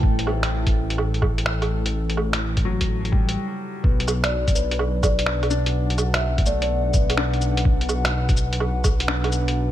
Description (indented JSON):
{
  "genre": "future garage",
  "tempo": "126 BPM",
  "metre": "4/4",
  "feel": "swing 67% on 16ths",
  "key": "B phrygian",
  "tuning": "A4 = 438 Hz",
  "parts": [
    { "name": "felt-muted upright piano", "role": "accompaniment", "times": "0.0-9.7 s", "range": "E3 to D4", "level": "-32 LUFS", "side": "left 4 dB", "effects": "sidechain pumping, digital delay" },
    { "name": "dark analog pad", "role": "sustained chords", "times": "0.0-9.7 s", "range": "D4 to G5", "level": "-32 LUFS", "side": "equal", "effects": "chorus, sidechain pumping" },
    { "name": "dark detuned saw bass", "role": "bass", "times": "0.0-9.7 s", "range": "A1 to B1", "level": "-24 LUFS", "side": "equal", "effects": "sidechain pumping" },
    { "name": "electronic kick drum", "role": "drums", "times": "0.0-9.0 s", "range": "none", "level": "-20 LUFS", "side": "equal", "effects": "small room ambience" },
    { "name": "backwards swelling texture", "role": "texture", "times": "0.0-3.4 s", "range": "A3 to A4", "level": "-36 LUFS", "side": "right 1 dB", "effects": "built-in reverb, wide subtle chorus" },
    { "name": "lo-fi sampler-style drum kit", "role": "drums", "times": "0.2-9.5 s", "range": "cabasa, finger snaps, hi-hat, woodblock", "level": "-26 LUFS", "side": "right 1 dB", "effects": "small room ambience" },
    { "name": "kalimba", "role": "melody", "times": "4.2-6.7 s", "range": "B4 to E5", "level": "-28 LUFS", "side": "left 1 dB", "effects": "digital delay" }
  ],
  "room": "light reverb, digital ambience",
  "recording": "bright 1980s-style digital production",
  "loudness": "-19 LUFS",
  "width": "side -12 dB against mid",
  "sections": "0.0-3.8 A section; 3.8-9.7 B section",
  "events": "break 3.4-3.8",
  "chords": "0.0 Am7; 3.8 Bm7",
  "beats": "| 0.03 0.51 0.98 1.46 | 1.94 2.41 2.89 3.37 | 3.84 4.32 4.79 5.27 | 5.75 6.22 6.70 7.17 | 7.65 8.13 8.60 9.08 | 9.55"
}